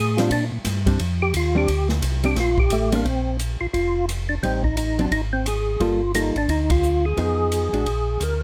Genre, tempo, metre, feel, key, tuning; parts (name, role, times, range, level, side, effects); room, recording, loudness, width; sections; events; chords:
soul jazz organ trio; 175 BPM; 4/4; swing 62% on 8ths; Bb major; A4 = 440 Hz
percussive tonewheel organ; melody; 0.0-8.4 s; A3 to Bb4; -25 LUFS; equal; slow rotary speaker, chorus vibrato
mellow tonewheel organ; bass; 0.0-8.4 s; F1 to Bb2; -26 LUFS; equal; slow rotary speaker
hollow-body jazz guitar; accompaniment; 0.2-7.9 s; F3 to A4; -27 LUFS; equal
swinging big-band drum kit; drums; 0.2-8.3 s; hi-hat, kick drum, ride cymbal, rim click, snare drum; -30 LUFS; equal
light reverb; close, detailed microphones; -22 LUFS; mono
0.0-3.1 A section; 3.1-8.4 B section
tonewheel organ solo 0.0-3.1; band accent 6.7
0.3 Bb69; 3.1 Bbsus2; 4.4 Am7b5; 5.1 Ab; 5.8 Gm9; 7.2 Fm7b5; 7.9 Bb7